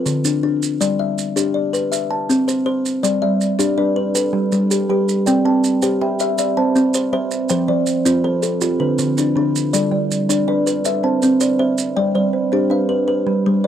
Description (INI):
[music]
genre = southern african traditional, mbira-style interlocking cycle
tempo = 108 BPM (dotted quarters)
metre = 12/8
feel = straight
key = G mixolydian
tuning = A4 = 440 Hz
[part]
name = kalimba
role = arpeggios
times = 0.0-13.7 s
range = D3 to A5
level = -18 LUFS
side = left 3 dB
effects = none
[part]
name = maracas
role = percussion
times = 0.1-12.0 s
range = none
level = -25 LUFS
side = right 8 dB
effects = none
[part]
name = kalimba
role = arpeggios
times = 3.2-13.7 s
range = D3 to G5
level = -19 LUFS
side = right 5 dB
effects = none
[sound]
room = light reverb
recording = dry, close 1970s-style studio recording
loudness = -16 LUFS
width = side -9 dB against mid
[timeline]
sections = 0.0-12.0 A section; 12.0-13.7 B section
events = none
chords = 0.0 Dm; 0.8 G; 1.9 C; 3.0 G; 5.3 C; 7.5 F; 8.6 Dm; 9.7 G; 10.8 C; 12.0 G